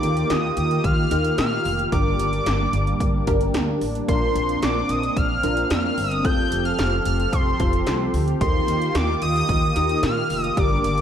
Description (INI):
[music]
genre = synth-pop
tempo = 111 BPM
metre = 4/4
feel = straight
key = unclear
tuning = A4 = 440 Hz
[part]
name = fat analog lead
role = melody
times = 0.0-11.0 s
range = C6 to G6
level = -25 LUFS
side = equal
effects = ping-pong delay
[part]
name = funky polysynth comp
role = accompaniment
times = 0.0-11.0 s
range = C4 to Bb4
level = -27 LUFS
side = left 1 dB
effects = chorus
[part]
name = warm analog pad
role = sustained chords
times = 0.0-11.0 s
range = Eb3 to A4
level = -26 LUFS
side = equal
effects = chorus
[part]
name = upright bass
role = bass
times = 0.0-11.0 s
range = F1 to Bb2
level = -25 LUFS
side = equal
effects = none
[part]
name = 80s electronic pad drums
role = drums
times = 0.0-11.0 s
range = hi-hat, kick drum, snare drum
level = -25 LUFS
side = equal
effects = none
[sound]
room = moderate plate reverb, RT60 1.3 s, digital ambience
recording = dreamy mix soaked in reverb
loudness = -19 LUFS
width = side -9 dB against mid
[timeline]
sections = 0.0-11.0 A section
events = none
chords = 0.0 Ebadd9; 1.9 Gm; 4.1 Bbadd9; 6.2 Fadd9; 8.4 Ebadd9